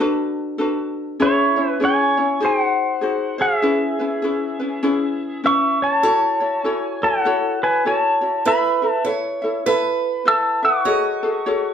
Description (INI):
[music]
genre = Hawaiian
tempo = 99 BPM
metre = 4/4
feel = swing 61% on 8ths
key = C# minor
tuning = A4 = 445 Hz
[part]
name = ukulele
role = accompaniment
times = 0.0-11.7 s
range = C#4 to E5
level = -22 LUFS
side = left 2 dB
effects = none
[part]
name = pedal steel guitar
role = melody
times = 1.2-11.7 s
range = E4 to E6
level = -18 LUFS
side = equal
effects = none
[part]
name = picked old ladder-braced acoustic guitar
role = second line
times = 6.0-11.7 s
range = B4 to D#5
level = -25 LUFS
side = right 6 dB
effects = none
[sound]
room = wet large studio reverb, RT60 0.9 s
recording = band playing live in one room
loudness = -17 LUFS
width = side -8 dB against mid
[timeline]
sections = 0.0-11.7 A section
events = none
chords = 0.0 D6; 1.2 C#m; 2.4 G#7; 3.6 C#m7; 6.0 F#m7; 8.4 Asus2; 10.9 F#madd9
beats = 0.00 0.60 | 1.21 1.81 2.41 3.02 | 3.62 4.22 4.83 5.43 | 6.04 6.64 7.24 7.84 | 8.45 9.05 9.65 10.26 | 10.86 11.46